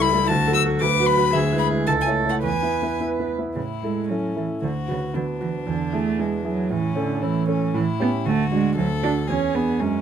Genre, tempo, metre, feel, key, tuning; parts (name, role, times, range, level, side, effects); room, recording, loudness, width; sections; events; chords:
quick classical-period movement for piano trio; 115 BPM; 2/4; rubato; A major; A4 = 440 Hz
warm violin; melody; 0.0-10.0 s; C#4 to E6; -26 LUFS; left 8 dB
dark cello; second line; 0.0-10.0 s; C#3 to B4; -24 LUFS; right 5 dB
warm concert grand piano; accompaniment; 0.0-10.0 s; C#2 to C#5; -23 LUFS; right 1 dB
light reverb; close, detailed microphones; -20 LUFS; side -8 dB against mid
0.0-3.6 A section; 3.6-10.0 B section
0.3 D; 0.8 Bm/D; 1.4 E7/D; 1.9 A/C#; 2.4 E; 3.6 A; 4.6 Bm/D; 5.7 E7; 6.7 A; 7.7 A7; 8.3 D; 9.3 E7